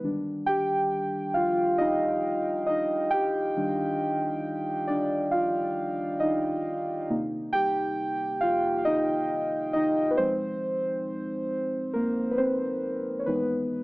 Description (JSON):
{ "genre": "R&B", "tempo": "68 BPM", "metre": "4/4", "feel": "swing 54% on 16ths", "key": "Eb major", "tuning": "A4 = 440 Hz", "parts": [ { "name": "muted felt-like synth keys", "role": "solo", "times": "0.0-13.8 s", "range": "C3 to G5", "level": "-25 LUFS", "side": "equal", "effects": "chorus" } ], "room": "light reverb", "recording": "small speaker sound", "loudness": "-25 LUFS", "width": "side -21 dB against mid", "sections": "0.0-13.8 A section", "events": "synth keys solo 0.0-13.8", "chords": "0.0 Ebmaj7; 7.1 Cm7; 10.2 Fm7; 13.3 Emaj7" }